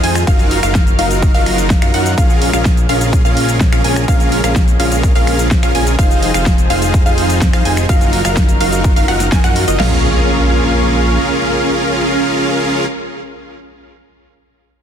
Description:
EDM, festival progressive house; 126 BPM; 4/4; straight; Bb minor; A4 = 440 Hz
lush unison pad; sustained chords; 0.0-12.9 s; F3 to F5; -22 LUFS; equal; chorus, vintage 12-bit sampler grit, sidechain pumping
wide unison pluck; arpeggios; 0.0-12.9 s; Eb5 to Ab5; -21 LUFS; right 1 dB; sidechain pumping, digital delay
dense compressed supersaw; riff; 0.0-12.9 s; Db4 to Ab5; -17 LUFS; right 1 dB; sidechain pumping, digital delay
fat analog bass; bass; 0.0-11.2 s; F1 to Gb2; -18 LUFS; equal; tube saturation, sidechain pumping
big-room dance drum kit; drums; 0.0-9.8 s; finger snaps, hi-hat, shaker, snare drum; -21 LUFS; equal; overdrive
big-room dance drum kit; drums; 0.3-9.9 s; crash cymbal, kick drum, snare drum; -13 LUFS; equal; overdrive
impact; sound effects; 9.9-12.9 s; -23 LUFS; equal
light reverb, digital ambience; dense, heavily limited modern master; -11 LUFS; side -9 dB against mid
0.0-9.8 A section; 9.8-13.6 B section
drop 0.0-9.8
0.3 Ebmadd9/Gb; 2.2 Bbm7; 6.0 Fm7; 7.9 Ebmadd9/Gb; 9.8 Bbm7

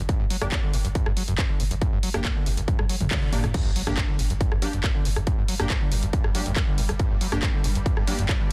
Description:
driving peak-time techno; 139 BPM; 4/4; straight; G harmonic minor; A4 = 440 Hz
warm sub bass; bass; 0.0-8.3 s; G1; -32 LUFS; equal; overdrive, sidechain pumping, low-pass filter
overdriven acid bass; riff; 0.1-8.5 s; F#2 to F#3; -33 LUFS; equal; distortion, subtle chorus, cassette tape, sidechain pumping, digital delay
electronic kick drum; drums; 0.1-8.4 s; -27 LUFS; equal; distortion, overdrive
punchy analog drum machine; drums; 0.1-8.4 s; crash cymbal, handclaps, hi-hat, rim click, toms; -32 LUFS; equal; sidechain pumping on hats, sidechain pumping on toms, sidechain pumping on cymbals
rave stab; stabs; 0.4-8.2 s; Bb3 to G4; -36 LUFS; equal; chorus, built-in reverb, sidechain pumping, digital delay
swarming drone; drone; 5.2-8.5 s; G2 to G3; -40 LUFS; equal; built-in reverb, sidechain pumping
impact; sound effects; 3.5-5.3 s; -39 LUFS; equal
little or no reverb; dense, heavily limited modern master; -24 LUFS; mono
0.0-3.5 A section; 3.5-8.5 B section
drum fill 2.7-3.5; band accent 3.1; drop 3.5-8.5; impact 3.5-5.3
0.0 Gm

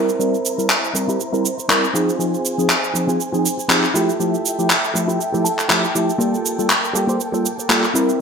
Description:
filtered disco house; 120 BPM; 4/4; swing 55% on 16ths; G dorian; A4 = 439 Hz
tine electric piano; accompaniment; 0.0-8.1 s; F3 to Bb4; -20 LUFS; equal; phaser, low-pass filter
warm studio violin section; sustained chords; 0.0-8.2 s; Bb3 to Bb5; -26 LUFS; right 1 dB; vintage 12-bit sampler grit, low-pass filter
direct-recorded clean electric guitar; riff; 0.0-8.2 s; Bb3 to A5; -24 LUFS; right 1 dB; vintage 12-bit sampler grit, low-pass filter
electronic shaker and handclaps; drums; 0.1-8.2 s; -19 LUFS; equal; gated reverb
warm horn section; melody; 6.9-7.2 s; G4; -29 LUFS; equal; low-pass filter, ping-pong delay
wet plate reverb, RT60 1.4 s, digital ambience; bright 1980s-style digital production; -16 LUFS; side -6 dB against mid
0.0-8.2 A section
filter sweep 0.0-8.2; clean electric guitar fill 5.2-6.2
0.0 C7; 1.9 Ab6; 3.9 Fmaj9; 6.2 Gm9

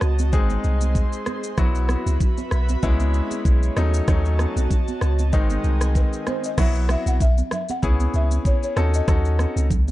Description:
afrobeats; 96 BPM; 4/4; swing 55% on 16ths; A4 = 439 Hz
airy breathy pad; sustained chords; 0.0-6.6 s; B#3 to B#5; -32 LUFS; right 2 dB; chorus
punchy sub bass; bass; 0.0-9.9 s; G#1 to D#2; -20 LUFS; equal
afro-pop drum kit; drums; 0.0-9.9 s; crash cymbal, kick drum, rim click, shaker; -22 LUFS; equal
congas; percussion; 0.2-9.9 s; -33 LUFS; right 7 dB
clear concert grand piano; accompaniment; 0.3-9.7 s; D#3 to A4; -27 LUFS; left 3 dB
buzzing marimba with medium mallets; melody; 6.0-9.9 s; B4 to F#5; -29 LUFS; left 1 dB; ping-pong delay
small room ambience; dark, warm production, nothing above 10.6 kHz; -18 LUFS; side -16 dB against mid
0.0-6.6 A section; 6.6-9.9 B section
0.3 G#; 1.6 Bsus4; 2.8 C#m7; 3.8 D#m7b5; 5.3 G#; 6.6 Bsus4; 7.8 C#m7; 8.8 D#m7b5

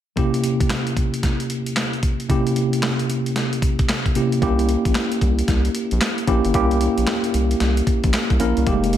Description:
R&B, new jack swing; 113 BPM; 4/4; swing 63% on 16ths; A4 = 440 Hz
tine electric piano; accompaniment; 0.2-9.0 s; C3 to Bb4; -21 LUFS; equal; overdrive, medium stereo tremolo, shimmer reverb
dusty soul sampler-style drum kit; drums; 0.2-9.0 s; handclaps, hi-hat, kick drum, snare drum; -22 LUFS; equal
round analog bass; bass; 4.4-9.0 s; F1 to C2; -21 LUFS; equal
light reverb; -18 LUFS; side -11 dB against mid
0.2-4.4 A section; 4.4-9.0 B section
0.2 C7b9

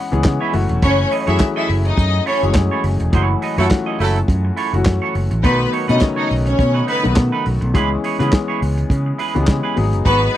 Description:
disco; 104 BPM; 4/4; swing 56% on 16ths; A4 = 440 Hz
warm grand piano; accompaniment; 0.0-10.4 s; C#3 to F#5; -22 LUFS; left 4 dB
clean electric guitar; accompaniment; 0.1-10.4 s; D#4 to D#5; -23 LUFS; right 8 dB
fingered electric bass; bass; 0.1-10.3 s; E1 to C#3; -18 LUFS; equal
warm soul drum kit; drums; 0.1-10.2 s; handclaps, hi-hat, kick drum, snare drum; -16 LUFS; equal
rich studio string section; second line; 0.8-10.3 s; B3 to E5; -19 LUFS; left 2 dB
clear horn section; stabs; 3.6-4.2 s; F#3 to A4; -19 LUFS; right 4 dB
little or no reverb; dry, close 1970s-style studio recording; -15 LUFS; side -12 dB against mid
0.0-10.4 A section
grand piano fill 0.0-0.8; band accent 3.1-5.4
0.0 C#m7; 0.5 F#m7; 5.4 B7; 7.7 C#m7; 9.8 G#m7

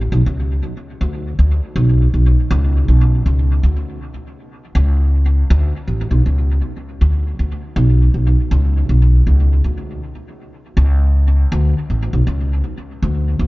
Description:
reggae; 80 BPM; 4/4; swing 62% on 16ths; A4 = 440 Hz
upright bass; solo; 0.0-13.5 s; A1 to D2; -13 LUFS; equal; dub echo
little or no reverb; nothing above 7.5 kHz; -13 LUFS; side -20 dB against mid
0.0-13.5 A section

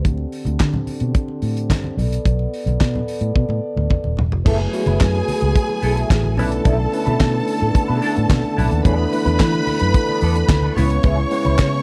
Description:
disco; 109 BPM; 4/4; straight; F# minor from 4.5 s; A4 = 440 Hz
mellow French horn section; sustained chords; 0.0-11.8 s; C#3 to D5; -28 LUFS; equal
vintage muted fingered electric bass; bass; 0.0-11.8 s; D#1 to E3; -22 LUFS; equal
damped 70s drum kit; drums; 0.0-11.7 s; crash cymbal, handclaps, hi-hat, kick drum, snare drum, toms; -21 LUFS; equal
congas; percussion; 0.1-11.8 s; -30 LUFS; equal
mellow tine electric piano; accompaniment; 4.4-11.8 s; F#3 to B4; -27 LUFS; equal
clear symphonic string section; second line; 4.5-11.8 s; G#4 to C#6; -27 LUFS; equal
clean electric guitar; accompaniment; 4.5-11.8 s; B3 to B4; -30 LUFS; equal; wah
light reverb, small room ambience; dark, warm production; -19 LUFS; mono
0.0-4.5 A section; 4.5-11.8 B section
drum fill 3.4-4.5
0.0 D7sus4; 2.0 Bm7; 4.5 F#m11; 6.4 Bm11; 8.8 E7sus4; 10.8 C#m7

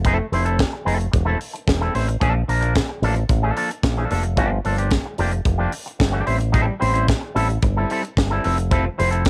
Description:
disco; 111 BPM; 4/4; straight; A4 = 440 Hz
fingered electric bass with an envelope filter; bass; 0.0-9.3 s; E1 to Bb1; -24 LUFS; equal
tight funk drum kit; drums; 0.0-9.3 s; hi-hat, kick drum, snare drum; -25 LUFS; equal
electric guitar with an envelope filter; accompaniment; 0.1-9.3 s; F3 to C5; -25 LUFS; equal; lush chorus, plate reverb
light reverb; home recording on cassette; -21 LUFS; mono
0.0-9.3 A section
0.0 Fmaj7; 2.2 Bbmaj7; 4.4 Gm7; 6.3 Am7; 8.4 Fmaj7

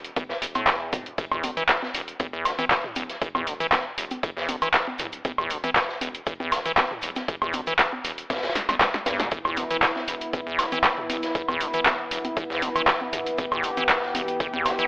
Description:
acid house; 118 BPM; 4/4; straight; E minor; A4 = 437 Hz
saturated sub bass; bass; 0.0-14.8 s; D1 to E2; -43 LUFS; equal; sidechain pumping
punchy analog drum machine; drums; 0.0-14.9 s; congas, handclaps, hi-hat, snare drum, toms, woodblock; -24 LUFS; equal
maracas; percussion; 0.0-14.9 s; -40 LUFS; right 1 dB
acid bass, square; riff; 0.2-14.9 s; E1 to E3; -29 LUFS; equal; tube saturation, cassette tape, digital delay
electronic kick drum; drums; 0.2-14.5 s; -28 LUFS; equal
vintage drum kit; drums; 0.2-14.9 s; hi-hat, snare drum; -33 LUFS; equal; sidechain pumping on hats, high-pass filter on hats, high-pass filter on snare, high-pass filter on room
warm analog pad; sustained chords; 9.3-14.9 s; E3 to G4; -30 LUFS; equal; chorus, vintage 12-bit sampler grit, sidechain pumping
light reverb, small room ambience; telephone sound; -22 LUFS; side -24 dB against mid
0.0-14.9 A section
drum fill 8.6-9.3
0.0 E5

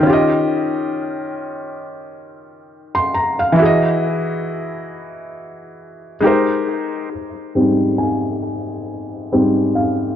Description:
hip hop; 68 BPM; 4/4; swing 57% on 16ths; Ab major; A4 = 440 Hz
felt-muted upright piano; solo; 0.0-10.2 s; Ab2 to C6; -16 LUFS; equal; low-pass filter, analog delay
moderate plate reverb, RT60 2.7 s; dark, warm production; -16 LUFS; side -10 dB against mid
0.0-7.1 A section; 7.1-10.2 B section
felt piano solo 7.1-10.2; filter sweep on felt piano 7.1-10.2
0.0 Eb9; 3.6 Emaj9; 6.2 Abmaj9; 7.1 Abmaj7

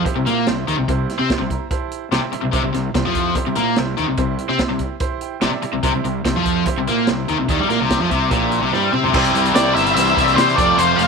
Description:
classic rock; 145 BPM; 4/4; straight; C mixolydian; A4 = 440 Hz
bright upright piano; accompaniment; 0.0-11.1 s; C4 to C6; -26 LUFS; right 11 dB
overdriven electric guitar; riff; 0.0-11.1 s; F2 to F4; -20 LUFS; left 12 dB
raw garage guitar; riff; 0.0-11.1 s; Bb2 to E4; -23 LUFS; right 12 dB; overdrive
fuzz fingered electric bass; bass; 0.0-11.1 s; F1 to C3; -26 LUFS; equal; overdrive
vintage drum kit; drums; 0.1-11.1 s; crash cymbal, hi-hat, kick drum, snare drum, toms; -23 LUFS; right 1 dB
octave-fuzz lead guitar; melody; 9.5-11.1 s; C5 to F5; -16 LUFS; left 1 dB; distortion, slapback echo
octave-fuzz lead guitar; second line; 9.5-11.1 s; F4 to C5; -27 LUFS; right 10 dB; distortion
light reverb, small room reverb; 1960s-style stereo with parts hard left and right; -16 LUFS; side -5 dB against mid
0.0-9.1 A section; 9.1-11.1 B section
upright piano fill 1.3-2.5, 5.0-5.8, 7.9-9.1; drum fill 8.7-9.1
0.0 C

